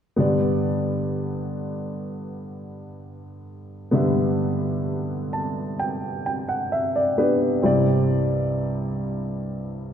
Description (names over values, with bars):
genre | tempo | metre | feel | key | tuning
pop | 64 BPM | 4/4 | straight | G major | A4 = 443 Hz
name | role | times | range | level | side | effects
warm baby grand piano | accompaniment | 0.2-9.9 s | C2 to A5 | -22 LUFS | equal | none
room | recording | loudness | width
wet scoring stage reverb, RT60 1.6 s | dark, warm production | -21 LUFS | side -8 dB against mid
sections
0.2-9.9 A section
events
grand piano fill 4.9-7.6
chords
0.2 G; 7.6 Cadd9